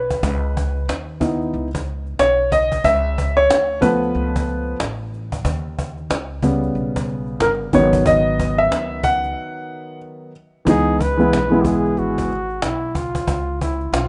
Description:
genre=hip hop, jazz-hop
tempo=92 BPM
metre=4/4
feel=swing 60% on 16ths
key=C# minor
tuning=A4 = 440 Hz
part: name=dark grand piano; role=accompaniment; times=0.0-12.3 s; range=C#3 to F#5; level=-20 LUFS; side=equal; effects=none
part: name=upright bass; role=bass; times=0.0-14.1 s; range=G1 to D#2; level=-28 LUFS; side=equal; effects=none
part: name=cajon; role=drums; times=0.1-14.1 s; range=none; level=-27 LUFS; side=equal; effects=none
part: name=breathy flugelhorn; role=melody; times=10.7-14.1 s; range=E4 to B4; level=-25 LUFS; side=equal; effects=analog delay
room=little or no reverb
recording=rough home demo mix, nothing above 10.4 kHz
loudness=-19 LUFS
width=mono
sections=0.0-10.7 A section; 10.7-14.1 B section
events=grand piano solo 0.0-10.7; break 9.4-10.7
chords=0.2 C#m7; 2.8 C#aug7; 5.5 D#7b13; 7.7 G#m7; 10.7 C#m7; 13.3 Aadd9 (rootless)

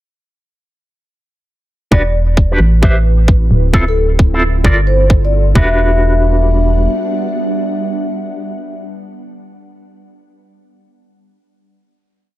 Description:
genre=UK garage, two-step garage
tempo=132 BPM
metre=4/4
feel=swing 66% on 16ths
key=E minor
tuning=A4 = 440 Hz
part: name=vibraphone with soft mallets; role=melody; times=1.9-8.8 s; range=A4 to E5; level=-20 LUFS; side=left 2 dB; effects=tape echo
part: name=ethereal airy pad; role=sustained chords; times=2.7-8.9 s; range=G3 to F#5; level=-22 LUFS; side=right 2 dB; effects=ensemble chorus, built-in reverb, sidechain pumping
part: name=electric guitar with an envelope filter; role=stabs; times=1.9-8.8 s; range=C4 to E5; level=-19 LUFS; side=equal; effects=tremolo
part: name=organ-like FM bass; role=bass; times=1.9-6.9 s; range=D1 to A1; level=-12 LUFS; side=equal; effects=none
part: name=electronic kick drum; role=drums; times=1.9-5.7 s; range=none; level=-10 LUFS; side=equal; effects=none
room=little or no reverb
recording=none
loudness=-10 LUFS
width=side -15 dB against mid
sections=1.9-5.6 breakdown; 5.6-9.2 final chord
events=filter sweep on ambient pad 1.9-5.6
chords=1.9 Em7; 2.6 Am7; 3.5 Dm7; 4.6 Gm7; 5.6 Em7

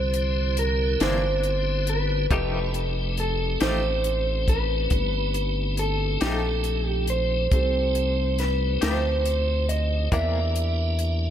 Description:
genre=slow blues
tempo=46 BPM (dotted quarters)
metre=12/8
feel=straight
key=F mixolydian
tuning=A4 = 439 Hz
part: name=electric guitar through a small old amp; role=melody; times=0.0-11.3 s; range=A4 to E5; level=-27 LUFS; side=right 1 dB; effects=harmonic tremolo
part: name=dark baby grand piano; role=accompaniment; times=0.0-11.3 s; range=C4 to D6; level=-37 LUFS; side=right 5 dB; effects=wide subtle chorus
part: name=tonewheel organ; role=sustained chords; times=0.0-11.3 s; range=D3 to G4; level=-31 LUFS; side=equal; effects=slow rotary speaker, chorus vibrato
part: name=rubbery square bass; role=bass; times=0.0-11.3 s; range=F1 to E2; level=-25 LUFS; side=equal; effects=none
part: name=compact cocktail drum kit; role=drums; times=0.1-11.2 s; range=hi-hat, kick drum, snare drum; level=-27 LUFS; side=equal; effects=none
part: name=clean electric guitar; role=accompaniment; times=1.0-10.4 s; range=C3 to G4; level=-33 LUFS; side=left 3 dB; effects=tremolo
room=light reverb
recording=none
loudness=-22 LUFS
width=side -10 dB against mid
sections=0.0-11.3 A section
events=none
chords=0.0 C9; 2.3 F9; 10.1 C9

